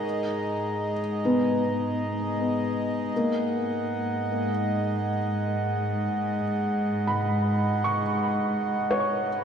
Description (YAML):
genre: ambient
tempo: free time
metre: none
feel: none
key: G# minor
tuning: A4 = 440 Hz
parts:
  - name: felt-muted upright piano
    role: arpeggios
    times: 0.0-9.4 s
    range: A#3 to C#6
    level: -28 LUFS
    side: left 1 dB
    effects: tape echo, shimmer reverb
  - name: dark chamber cello section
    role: bass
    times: 0.0-9.4 s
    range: G#2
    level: -29 LUFS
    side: equal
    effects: none
  - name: pedal harmonium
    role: drone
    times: 0.0-9.4 s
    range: G#3 to D#4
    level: -31 LUFS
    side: right 1 dB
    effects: none
  - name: glass harmonica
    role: texture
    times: 0.0-9.4 s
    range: F#5 to A#5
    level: -32 LUFS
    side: right 3 dB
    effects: shimmer reverb
room: wet cathedral reverb, RT60 4.7 s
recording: in a vast, echoing space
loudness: -24 LUFS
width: side -7 dB against mid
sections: 0.0-9.4 A section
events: fade-in on cello section 0.0-9.4; fade-in on glass harmonica 0.0-9.4; fade-out on felt piano 0.0-9.4; fade-out on harmonium 0.0-9.4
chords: 0.0 G#madd9; 3.1 G#m